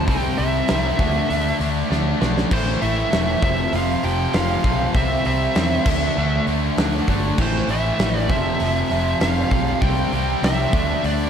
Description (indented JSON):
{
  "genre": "hard rock",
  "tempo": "99 BPM",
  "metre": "4/4",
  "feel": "straight",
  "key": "unclear",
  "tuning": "A4 = 440 Hz",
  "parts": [
    { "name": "bluesy overdriven lead guitar", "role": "melody", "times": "0.0-11.3 s", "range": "C5 to G5", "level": "-24 LUFS", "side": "right 1 dB", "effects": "distortion, slapback echo, analog delay" },
    { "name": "cranked stack guitar", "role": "riff", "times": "0.0-11.3 s", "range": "F2 to D4", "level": "-22 LUFS", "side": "equal", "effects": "overdrive, slapback echo" },
    { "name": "fingered electric bass", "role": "bass", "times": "0.0-11.3 s", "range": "E1 to E2", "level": "-24 LUFS", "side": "equal", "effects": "none" },
    { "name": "big rock drum kit", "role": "drums", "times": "0.1-11.2 s", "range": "crash cymbal, hi-hat, kick drum, snare drum", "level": "-23 LUFS", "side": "equal", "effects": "none" }
  ],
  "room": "moderate lush hall reverb, RT60 2.9 s",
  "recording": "big arena sound",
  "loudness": "-17 LUFS",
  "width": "side -8 dB against mid",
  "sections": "0.0-11.3 A section",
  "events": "drum fill 1.9-2.5",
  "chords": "0.1 C; 1.0 D5; 2.5 A5; 3.4 F5; 5.0 C; 5.9 D5; 7.4 A5; 8.3 F5; 9.8 C5; 10.7 D5"
}